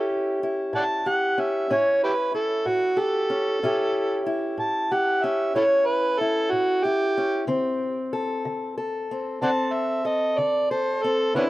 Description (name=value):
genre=acoustic country blues, solo or duo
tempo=62 BPM (dotted quarters)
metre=12/8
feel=straight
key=A mixolydian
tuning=A4 = 440 Hz
part: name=overdriven harmonica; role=melody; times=0.0-11.5 s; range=B3 to A5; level=-23 LUFS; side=right 1 dB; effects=none
part: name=fingerpicked steel-string acoustic guitar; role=accompaniment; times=0.0-11.5 s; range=A2 to A4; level=-26 LUFS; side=left 2 dB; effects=none
room=light reverb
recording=rough home demo mix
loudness=-21 LUFS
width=side -17 dB against mid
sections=0.0-11.5 A section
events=none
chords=0.0 A7; 7.5 D7(no3)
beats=0.73 1.70 2.66 | 3.62 4.58 5.54 6.51 | 7.47 8.43 9.40 10.36 | 11.33